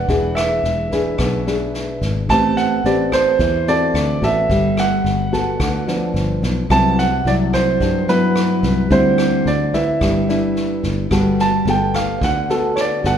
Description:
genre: bossa nova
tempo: 109 BPM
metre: 4/4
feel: straight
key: G major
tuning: A4 = 440 Hz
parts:
  - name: clear concert grand piano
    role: melody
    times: 0.0-13.2 s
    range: A4 to A5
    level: -19 LUFS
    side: right 3 dB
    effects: none
  - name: nylon-string guitar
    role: accompaniment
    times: 0.0-13.2 s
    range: G2 to B4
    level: -19 LUFS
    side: left 1 dB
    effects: none
  - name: fingered electric bass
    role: bass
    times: 0.0-13.2 s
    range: E1 to G2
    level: -22 LUFS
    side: equal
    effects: none
  - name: swinging big-band drum kit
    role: drums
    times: 0.1-13.1 s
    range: kick drum, rim click, snare drum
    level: -26 LUFS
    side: left 1 dB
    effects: none
room: moderate scoring stage reverb, RT60 2.1 s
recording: recorded in a church or concert hall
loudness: -15 LUFS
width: side -8 dB against mid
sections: 0.0-11.1 A section; 11.1-13.2 B section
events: grand piano solo 11.1-13.2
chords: 0.0 E7; 2.3 Am9; 3.9 D7; 4.5 Gmaj9; 6.2 G7; 6.7 Cmaj7#11; 8.9 D9sus4; 10.0 G6; 11.1 Gmaj9

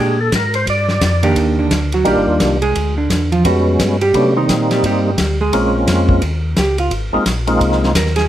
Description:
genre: soul jazz organ trio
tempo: 173 BPM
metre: 4/4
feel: swing 62% on 8ths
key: Eb major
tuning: A4 = 441 Hz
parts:
  - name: percussive tonewheel organ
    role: melody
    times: 0.0-7.9 s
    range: Eb3 to D5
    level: -16 LUFS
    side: equal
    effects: slow rotary speaker, overdrive, chorus vibrato
  - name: hollow-body jazz guitar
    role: accompaniment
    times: 0.0-8.2 s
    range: D3 to Bb4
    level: -17 LUFS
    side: right 3 dB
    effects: none
  - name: mellow tonewheel organ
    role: bass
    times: 0.0-8.3 s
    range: G1 to C3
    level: -18 LUFS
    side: left 1 dB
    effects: slow rotary speaker
  - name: warm soul drum kit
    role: drums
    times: 0.3-8.3 s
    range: hi-hat, kick drum, ride cymbal, snare drum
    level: -20 LUFS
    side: left 1 dB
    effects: none
room: moderate studio reverb, RT60 0.6 s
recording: none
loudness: -13 LUFS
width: side -12 dB against mid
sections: 0.0-1.4 A section; 1.4-8.3 A section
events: tonewheel organ solo 0.0-1.4; hollow-body jazz guitar solo 1.4-8.3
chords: 0.0 Bb6; 1.4 Ebmaj7; 2.8 Ddim; 3.4 Db7#11; 4.1 Cm9; 5.5 Bbm7; 6.2 Dbadd9; 6.9 Ab6

